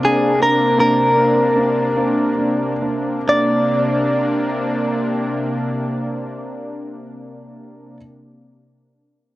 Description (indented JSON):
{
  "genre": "six-eight pop ballad",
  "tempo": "43-54 BPM (dotted quarters)",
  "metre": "6/8",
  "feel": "straight",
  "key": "Bb major",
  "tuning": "A4 = 439 Hz",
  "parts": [
    { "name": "direct-recorded clean electric guitar", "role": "melody", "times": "0.0-8.0 s", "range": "Ab4 to D5", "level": "-17 LUFS", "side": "equal", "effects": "tremolo, cassette tape" },
    { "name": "warm concert grand piano", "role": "accompaniment", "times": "0.0-8.0 s", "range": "Bb3 to D4", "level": "-23 LUFS", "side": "right 1 dB", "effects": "cassette tape" },
    { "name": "lush unison pad", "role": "sustained chords", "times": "0.0-8.0 s", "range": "C3 to D4", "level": "-21 LUFS", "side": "equal", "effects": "chorus, cassette tape" }
  ],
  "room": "moderate studio reverb, RT60 0.6 s",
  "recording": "home recording on cassette",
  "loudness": "-15 LUFS",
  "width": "side -17 dB against mid",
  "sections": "0.0-3.3 A section; 3.3-8.8 B section",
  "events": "slowing down 0.0-3.3",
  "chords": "0.0 Bbadd9",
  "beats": "| 0.78 1.97 | 3.28 4.66 | 6.04 7.43"
}